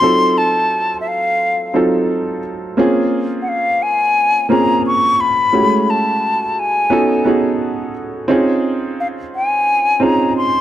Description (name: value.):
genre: soul.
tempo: 87 BPM.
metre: 4/4.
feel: swing 58% on 16ths.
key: unclear.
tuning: A4 = 440 Hz.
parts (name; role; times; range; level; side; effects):
concert flute; melody; 0.0-10.6 s; Fb5 to Db6; -15 LUFS; left 2 dB; none.
clear grand piano; accompaniment; 0.0-10.6 s; Gb3 to A4; -16 LUFS; right 1 dB; none.
room: light reverb.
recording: dark, warm production.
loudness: -13 LUFS.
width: side -12 dB against mid.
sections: 0.0-10.6 A section.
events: none.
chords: 0.0 F7b9; 2.8 Bbm7; 5.5 Gbm7; 6.9 Cb9; 8.3 Dbmaj9.